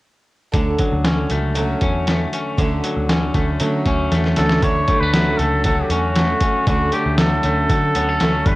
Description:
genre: jangly indie pop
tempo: 117 BPM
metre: 4/4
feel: straight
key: D major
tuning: A4 = 441 Hz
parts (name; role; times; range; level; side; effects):
- picked twelve-string acoustic guitar; accompaniment; 0.5-8.6 s; D3 to D4; -25 LUFS; right 2 dB; none
- electric guitar at the edge of break-up; arpeggios; 0.5-8.6 s; G2 to C#4; -23 LUFS; left 2 dB; none
- vintage muted picked electric bass; bass; 0.5-8.6 s; G1 to D3; -22 LUFS; equal; none
- lo-fi sampler-style drum kit; drums; 0.5-8.6 s; hi-hat, kick drum, snare drum; -20 LUFS; equal; overdrive
- clear trumpet; melody; 4.4-8.6 s; F#4 to C#5; -20 LUFS; equal; none
room: moderate large studio reverb, RT60 1.3 s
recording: worn, warbling old tape, cassette tape, warbly pitch drift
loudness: -16 LUFS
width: side -19 dB against mid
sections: 0.5-4.6 A section; 4.6-8.6 B section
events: drum fill 4.1-4.6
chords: 0.5 Dmaj7

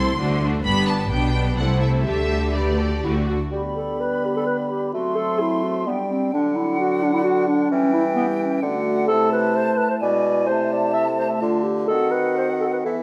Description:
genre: quick classical-period movement for symphony orchestra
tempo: 128 BPM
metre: 3/4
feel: rubato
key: G major, A minor from 9.1 s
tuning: A4 = 439 Hz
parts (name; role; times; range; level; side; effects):
- warm studio violin section; melody; 0.0-3.3 s; D5 to C6; -30 LUFS; equal; none
- dark studio violin section; second line; 0.0-3.5 s; F#4 to C5; -32 LUFS; equal; none
- warm studio viola section; accompaniment; 0.0-3.3 s; A3 to G4; -28 LUFS; equal; none
- rich studio double bass section; bass; 0.0-3.3 s; G1 to D2; -27 LUFS; equal; none
- warm studio cello section; bass; 0.0-3.3 s; G2 to D3; -27 LUFS; equal; none
- dark clarinet; second line; 3.0-13.0 s; B3 to E5; -24 LUFS; equal; none
- bright large flute ensemble; second line; 3.5-13.0 s; E5 to C6; -30 LUFS; equal; none
- clear bassoon; accompaniment; 3.5-13.0 s; B2 to A3; -28 LUFS; equal; none
- mellow French horn section; sustained chords; 3.5-13.0 s; D3 to F#4; -29 LUFS; equal; none
room: moderate scoring stage reverb, RT60 1.8 s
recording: none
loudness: -21 LUFS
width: mono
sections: 0.0-3.5 A section; 3.5-13.0 B section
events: none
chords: 0.2 D7; 0.6 G; 1.6 Am/C; 2.1 Dsus4; 3.0 D; 3.5 G/D; 4.9 F#dim; 5.9 G; 6.3 D; 7.7 Em6; 8.6 D; 9.1 Am/C; 10.0 E7/B; 10.5 Am/C; 11.4 Dm; 11.9 D#dim7

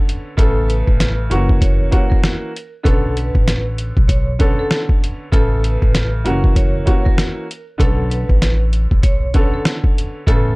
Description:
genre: hip hop, boom-bap hip-hop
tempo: 97 BPM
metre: 4/4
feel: swing 61% on 16ths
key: B minor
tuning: A4 = 440 Hz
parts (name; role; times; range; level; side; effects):
- clear upright piano; accompaniment; 0.0-10.6 s; C#3 to A4; -23 LUFS; right 1 dB; high-pass filter, low-pass filter
- trip hop sampler-style drum kit; drums; 0.1-10.5 s; hi-hat, kick drum, snare drum; -15 LUFS; equal; none
- vibraphone with hard mallets; melody; 0.4-10.6 s; A4 to C#5; -26 LUFS; equal; high-pass filter, low-pass filter
- upright bass; bass; 0.4-10.6 s; F#1 to B1; -18 LUFS; equal; tube saturation
room: little or no reverb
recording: dry, gritty hardware recording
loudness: -14 LUFS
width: side -26 dB against mid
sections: 0.0-10.6 A section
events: none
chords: 0.4 Aadd9; 1.3 F#7; 2.9 Bm9; 5.3 Aadd9; 6.3 F#7; 7.8 Bm9

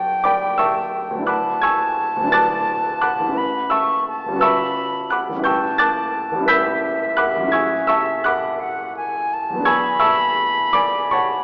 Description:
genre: classical, impressionist duo for flute and grand piano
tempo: 57 BPM (dotted quarters)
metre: 6/8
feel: rubato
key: unclear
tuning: A4 = 439 Hz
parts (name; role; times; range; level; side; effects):
- concert flute; melody; 0.0-11.4 s; E5 to C#6; -20 LUFS; equal; none
- clear baby grand piano; accompaniment; 0.0-11.4 s; G1 to B6; -18 LUFS; equal; none
room: wet recital hall reverb, RT60 1.4 s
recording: AM radio sound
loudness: -16 LUFS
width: side -29 dB against mid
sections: 0.0-11.4 A section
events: none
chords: 0.0 Em9/B; 1.3 D69; 3.4 Aadd9; 5.5 A9; 7.6 F#m9/A; 9.7 E9

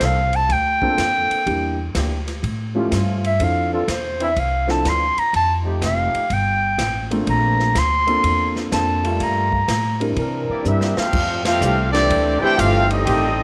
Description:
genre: jazz, big band swing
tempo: 124 BPM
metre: 4/4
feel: swing 67% on 8ths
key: F major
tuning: A4 = 440 Hz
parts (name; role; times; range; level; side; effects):
- clear clarinet; melody; 0.0-10.0 s; A4 to C6; -22 LUFS; equal; none
- clear trombone section; sustained chords; 0.0-13.3 s; D3 to Bb4; -29 LUFS; equal; none
- upright bass; bass; 0.0-13.4 s; F1 to C3; -25 LUFS; equal; none
- swinging big-band drum kit; drums; 0.0-13.2 s; crash cymbal, hi-hat, kick drum, ride cymbal, snare drum; -30 LUFS; equal; none
- warm grand piano; accompaniment; 0.8-10.9 s; F3 to Bb4; -27 LUFS; equal; none
- clear trumpet section; melody; 10.5-13.4 s; Bb3 to G5; -22 LUFS; equal; none
- clear trombone section; second line; 10.5-13.4 s; E3 to G4; -26 LUFS; equal; none
room: light reverb, small room ambience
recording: none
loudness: -19 LUFS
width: mono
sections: 0.0-11.1 A section; 11.1-13.4 B section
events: clarinet solo 0.0-11.1; drum fill 10.7-11.1; band accent 11.4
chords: 0.0 Bbmaj9; 1.5 Em7b5; 2.4 A7b13; 3.4 Dm9; 5.3 F9; 7.3 Bbmaj9; 9.2 Gm9; 11.1 Fmaj13

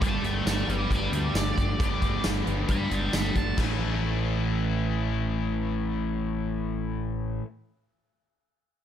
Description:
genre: classic rock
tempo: 134 BPM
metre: 4/4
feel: straight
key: A mixolydian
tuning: A4 = 440 Hz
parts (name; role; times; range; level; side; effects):
- octave-fuzz lead guitar; melody; 0.0-3.6 s; D5 to B5; -32 LUFS; equal; wah, distortion, analog delay
- cranked stack guitar; riff; 0.0-7.5 s; G2 to G4; -31 LUFS; left 9 dB; overdrive
- crunchy overdriven guitar; riff; 0.0-7.5 s; A2 to B4; -33 LUFS; right 11 dB; none
- growling picked electric bass; bass; 0.0-7.4 s; G1 to G2; -30 LUFS; equal; overdrive
- huge arena drum kit; drums; 0.0-3.7 s; crash cymbal, hi-hat, kick drum, snare drum, tambourine; -29 LUFS; equal; none
room: light reverb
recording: none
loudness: -25 LUFS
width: side -9 dB against mid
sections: 0.0-3.6 A section; 3.6-7.2 B section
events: lead electric guitar solo 0.0-3.6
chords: 0.0 Gadd9; 3.6 A

